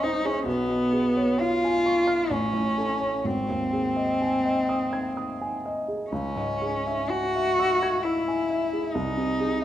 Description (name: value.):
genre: classical, romantic duo for cello and grand piano.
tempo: 64 BPM.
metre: 3/4.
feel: uneven beats, rubato.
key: C# minor.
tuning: A4 = 440 Hz.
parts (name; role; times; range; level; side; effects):
rich cello; melody; 0.0-9.6 s; B3 to F#4; -24 LUFS; left 1 dB; none.
warm grand piano; accompaniment; 0.0-9.6 s; G#1 to G#6; -28 LUFS; right 1 dB; none.
room: wet recital hall reverb, RT60 1.3 s.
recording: none.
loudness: -23 LUFS.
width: side -12 dB against mid.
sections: 0.0-9.6 A section.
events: none.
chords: 0.5 C#7/B; 2.3 A; 3.3 G#; 6.1 C#m; 8.9 G#/B#.